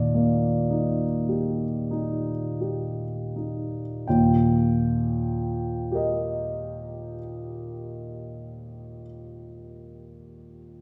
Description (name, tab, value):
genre	classical, impressionist solo piano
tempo	25-38 BPM (dotted quarters)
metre	9/8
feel	rubato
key	Eb major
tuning	A4 = 438 Hz
part	clear grand piano	solo	0.0-10.8 s	Eb2 to G5	-27 LUFS	equal	none
room	wet scoring stage reverb, RT60 1.6 s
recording	heard from further back in the room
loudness	-26 LUFS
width	mono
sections	0.0-4.1 A section; 4.1-9.6 B section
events	slowing down 0.0-4.1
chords	0.0 Eb